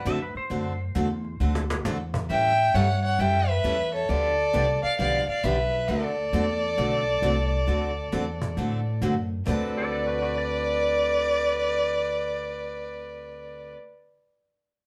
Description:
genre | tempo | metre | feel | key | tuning
country, western swing | 134 BPM | 4/4 | swing 65% on 8ths | D mixolydian | A4 = 440 Hz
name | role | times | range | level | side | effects
clean lap steel guitar | second line | 0.0-1.7, 9.8-13.8 s | F#4 to E5 | -37 LUFS | equal | none
dark fiddle | second line | 0.0-13.7 s | A4 to E5 | -33 LUFS | equal | none
upright bass | bass | 0.0-13.7 s | B1 to A2 | -32 LUFS | equal | none
picked steel-string acoustic guitar | accompaniment | 0.1-13.8 s | D3 to A4 | -33 LUFS | equal | none
cajon | drums | 0.1-9.6 s | none | -35 LUFS | equal | none
dark fiddle | melody | 2.3-13.7 s | C#5 to G5 | -28 LUFS | equal | none
room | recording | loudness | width
wet studio reverb, RT60 0.7 s | band playing live in one room | -25 LUFS | mono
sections
0.0-9.5 A section; 9.5-13.0 B section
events
drum fill 1.4-1.8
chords
0.0 D9; 2.3 A9; 4.1 G9; 5.9 D9; 9.5 D6

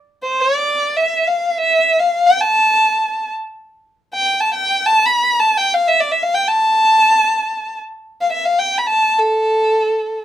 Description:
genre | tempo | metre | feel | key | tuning
Turkish makam ensemble | free time | none | none | A makam ussak | A4 = 440 Hz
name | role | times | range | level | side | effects
rich violin | solo | 0.2-10.2 s | A4 to B5-24c | -13 LUFS | equal | none
room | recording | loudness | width
moderate studio reverb, RT60 0.5 s | minimal, uncompressed stereo recording | -13 LUFS | side -11 dB against mid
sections
0.0-10.2 A section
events
none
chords
none

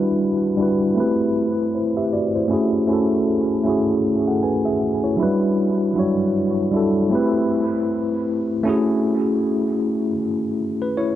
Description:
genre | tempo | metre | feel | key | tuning
hip hop | 78 BPM | 4/4 | swing 58% on 16ths | F# phrygian | A4 = 441 Hz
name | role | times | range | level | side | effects
tine electric piano | solo | 0.0-11.2 s | F#3 to G#5 | -18 LUFS | equal | medium stereo tremolo, low-pass filter, analog delay
room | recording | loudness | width
light reverb | echo-heavy mix, cassette tape, low-pass filter | -18 LUFS | side -12 dB against mid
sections
0.0-8.7 A section; 8.7-11.2 B section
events
filter sweep 0.0-8.7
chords
0.0 Em9; 1.0 Am9; 2.5 F#m9; 5.2 Em9; 7.1 Am9; 8.7 F#m9

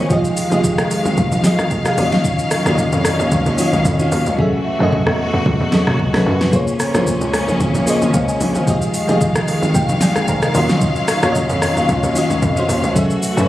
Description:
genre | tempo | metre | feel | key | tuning
amapiano | 112 BPM | 4/4 | swing 55% on 16ths | unclear | A4 = 442 Hz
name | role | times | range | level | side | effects
bell-like FM electric piano | accompaniment | 0.0-13.5 s | Eb3 to C6 | -18 LUFS | equal | chorus
bright studio string section | sustained chords | 0.0-13.5 s | Db3 to F5 | -20 LUFS | equal | sidechain pumping
hollow log drum bass | bass | 0.0-13.5 s | F1 to Gb2 | -20 LUFS | equal | none
smooth R&B drum kit | drums | 0.1-13.5 s | hi-hat, kick drum, rim click, shaker, snare drum, toms | -20 LUFS | equal | none
room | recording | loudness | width
light reverb, digital ambience | recorded on a phone in the room, club reverb, compression | -14 LUFS | side -14 dB against mid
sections
0.0-13.5 A section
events
hi-hats muted 4.4-6.5; FM electric piano fill 9.2-10.8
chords
0.1 Fm9; 2.0 Ebm9; 4.4 Gbm9; 6.5 Bbm9; 8.7 Fm9; 10.5 Ebm9; 13.0 Gbm9

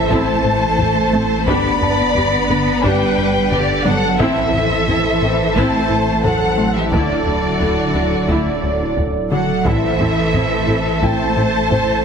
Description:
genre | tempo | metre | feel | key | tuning
cinematic, hybrid orchestral and electronic film score | 88 BPM | 4/4 | straight | A dorian | A4 = 440 Hz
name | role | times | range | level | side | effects
rich studio violin section | melody | 0.0-12.0 s | D5 to B5 | -21 LUFS | left 2 dB | none
rich symphonic violin section | second line | 0.0-12.0 s | F#4 to D5 | -22 LUFS | left 1 dB | none
hollow soft pad | sustained chords | 0.0-12.0 s | E3 to D5 | -23 LUFS | right 1 dB | chorus
rich symphonic cello section | bass | 0.0-12.0 s | D3 to B3 | -22 LUFS | right 3 dB | none
saturated sub bass | bass | 0.0-12.0 s | D1 to A1 | -27 LUFS | equal | none
impact | sound effects | 0.0-1.5 s | none | barely audible | none | none
bright grand piano | texture | 0.0-12.0 s | A4 to A5 | -28 LUFS | equal | none
warm studio viola section | accompaniment | 0.1-11.8 s | F#3 to G4 | -24 LUFS | right 1 dB | none
dark French horn section | sustained chords | 0.1-11.3 s | A3 to E4 | -29 LUFS | left 2 dB | none
rubbery square bass | riff | 0.1-11.9 s | D2 to A3 | -23 LUFS | left 2 dB | none
dark symphonic double bass section | bass | 0.1-11.8 s | G1 to D2 | -27 LUFS | right 4 dB | none
taiko ensemble | drums | 0.1-12.0 s | none | -26 LUFS | equal | none
room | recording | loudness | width
wet scoring stage reverb, RT60 1.7 s | heavily compressed radio sound, multiband compression | -14 LUFS | side -6 dB against mid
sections
0.0-12.0 A section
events
impact 0.0-1.5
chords
0.0 Am; 1.5 G; 4.2 Am; 6.9 Dadd9; 9.7 Am

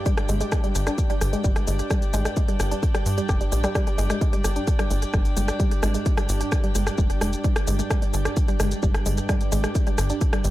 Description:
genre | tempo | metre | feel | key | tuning
driving peak-time techno | 130 BPM | 4/4 | straight | unclear | A4 = 440 Hz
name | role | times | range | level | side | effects
deep dark ambient pad | drone | 0.0-10.5 s | G2 | -35 LUFS | right 2 dB | chorus, built-in reverb, sidechain pumping
warm chamber string section | texture | 0.0-10.5 s | D4 to G5 | -32 LUFS | equal | sidechain pumping
woody wave-folded pluck | riff | 0.1-10.5 s | G3 to G4 | -30 LUFS | equal | chorus, tube saturation, sidechain pumping, analog delay
electronic kick drum | drums | 0.1-10.3 s | none | -23 LUFS | equal | none
techno drum kit | drums | 0.1-10.5 s | hi-hat, rim click, shaker | -30 LUFS | equal | sidechain pumping on hats, sidechain pumping on perc, analog delay
tight sequencer bass | bass | 0.3-10.5 s | F1 to G2 | -25 LUFS | equal | sidechain pumping
room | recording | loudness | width
light reverb | echo-heavy mix | -20 LUFS | side -15 dB against mid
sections
0.0-10.5 A section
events
filter sweep on synth arpeggio sound 0.0-10.5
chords
0.0 G5

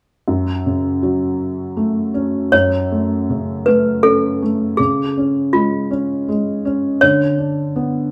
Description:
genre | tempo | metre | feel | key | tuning
children's music | 80 BPM | 3/4 | rubato | F# minor | A4 = 441 Hz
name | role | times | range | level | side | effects
felt-muted upright piano | accompaniment | 0.3-8.1 s | F#2 to D4 | -20 LUFS | equal | none
toy piano | melody | 2.5-8.1 s | E#4 to C#5 | -19 LUFS | equal | none
room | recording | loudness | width
moderate large studio reverb, RT60 1.2 s | band playing live in one room | -17 LUFS | mono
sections
0.3-2.5 A section; 2.5-8.1 B section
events
none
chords
0.3 F#m; 4.8 C#; 7.0 Bm/D

